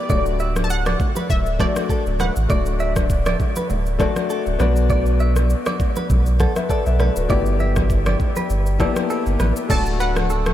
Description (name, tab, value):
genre	afrobeats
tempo	100 BPM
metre	4/4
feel	swing 55% on 16ths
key	unclear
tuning	A4 = 436 Hz
part	analog pluck	melody	0.0-4.0, 9.7-10.5 s	D5 to A5	-28 LUFS	equal	chorus, tape echo
part	warm grand piano	accompaniment	0.0-10.5 s	A3 to F#5	-24 LUFS	left 5 dB	none
part	direct-recorded clean electric guitar	riff	0.1-10.5 s	A4 to E5	-27 LUFS	right 4 dB	lush chorus, tape echo
part	warm sub bass	bass	0.1-10.5 s	D1 to B1	-20 LUFS	equal	none
part	afro-pop drum kit	drums	0.1-10.5 s	crash cymbal, kick drum, rim click, shaker	-23 LUFS	equal	none
part	congas	percussion	0.1-10.5 s	none	-28 LUFS	equal	none
part	mellow brass ensemble	sustained chords	9.7-10.5 s	A3 to F#4	-29 LUFS	left 2 dB	none
room	light reverb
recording	none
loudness	-17 LUFS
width	side -12 dB against mid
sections	0.0-9.7 A section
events	none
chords	0.1 D; 7.3 G6; 9.7 D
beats	| 0.10 0.70 1.30 1.90 | 2.50 3.10 3.70 4.30 | 4.90 5.50 6.10 6.70 | 7.30 7.90 8.50 9.10 | 9.70 10.30